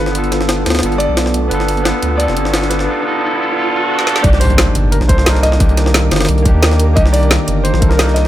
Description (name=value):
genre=liquid drum and bass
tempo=176 BPM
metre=4/4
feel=straight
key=C dorian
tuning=A4 = 439 Hz
part: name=warm concert grand piano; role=melody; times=0.0-8.3 s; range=Bb4 to Eb5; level=-21 LUFS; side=equal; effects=tape echo
part: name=overdriven tine electric piano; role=accompaniment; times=0.0-8.3 s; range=Bb3 to Bb4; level=-19 LUFS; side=right 1 dB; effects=digital delay
part: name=ethereal airy pad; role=sustained chords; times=0.0-8.3 s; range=Eb3 to D6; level=-22 LUFS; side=equal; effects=ensemble chorus, built-in reverb, vintage 12-bit sampler grit, sidechain pumping
part: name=saturated sub bass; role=bass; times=0.0-8.3 s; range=F1 to Eb2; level=-15 LUFS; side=equal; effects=none
part: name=riser and impact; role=sound effects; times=1.0-5.6 s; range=none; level=-21 LUFS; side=equal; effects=none
part: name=drum and bass drum kit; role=drums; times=0.1-8.2 s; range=hi-hat, snare drum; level=-18 LUFS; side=equal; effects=high-pass filter on hats, high-pass filter on snare, high-pass filter on room
part: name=jungle sampler-style drum kit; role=drums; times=0.1-8.3 s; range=hi-hat, snare drum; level=-20 LUFS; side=equal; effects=high-pass filter on hats, high-pass filter on snare
part: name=electronic kick drum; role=drums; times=4.2-7.9 s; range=none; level=-12 LUFS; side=equal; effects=none
room=light reverb, digital ambience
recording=none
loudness=-11 LUFS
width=side -13 dB against mid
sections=0.0-4.2 A section; 4.2-8.3 B section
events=build-up 0.0-4.2; riser 1.0-4.2; drum fill 4.0; drop 4.2-8.3; impact 4.2-5.6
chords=0.0 G7; 4.2 Cm7